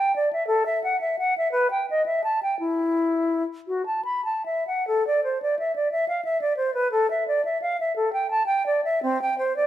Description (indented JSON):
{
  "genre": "classical, baroque-style fantasia for unaccompanied flute",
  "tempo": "47-61 BPM (dotted quarters)",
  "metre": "6/8",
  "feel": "rubato",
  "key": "E minor, A minor from 4.9 s",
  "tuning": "A4 = 440 Hz",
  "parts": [
    { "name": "concert flute", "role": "solo", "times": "0.0-9.7 s", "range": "C4 to B5", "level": "-22 LUFS", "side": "equal", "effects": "none" }
  ],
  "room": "wet stone room reverb, RT60 1.3 s",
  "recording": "minimal, uncompressed stereo recording",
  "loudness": "-22 LUFS",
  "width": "side -12 dB against mid",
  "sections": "0.0-4.9 A section; 4.9-9.7 A section",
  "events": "none",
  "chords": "none"
}